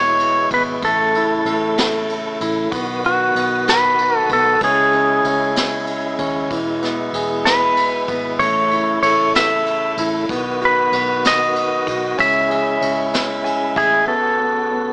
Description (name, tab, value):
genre	six-eight pop ballad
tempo	63 BPM (dotted quarters)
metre	6/8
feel	straight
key	unclear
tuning	A4 = 440 Hz
part	clean lap steel guitar	melody	0.0-14.9 s	F#4 to E5	-16 LUFS	equal	analog delay
part	clear grand piano	accompaniment	0.0-14.9 s	E3 to G#5	-22 LUFS	equal	none
part	tonewheel organ	sustained chords	0.0-14.9 s	B2 to F#4	-24 LUFS	equal	chorus vibrato, fast rotary speaker
part	vintage muted fingered electric bass	bass	0.0-14.1 s	E1 to D#2	-35 LUFS	equal	none
part	vintage brush drum kit	drums	0.2-13.9 s	kick drum, ride cymbal, snare drum	-24 LUFS	equal	none
room	light reverb, studio ambience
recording	small speaker sound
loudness	-14 LUFS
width	side -30 dB against mid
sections	0.0-14.1 A section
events	grand piano fill 13.1-14.1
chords	0.0 E; 0.8 A; 2.7 B; 4.6 C#m; 6.5 E; 8.4 A; 10.3 B; 12.2 C#m; 14.1 Bsus2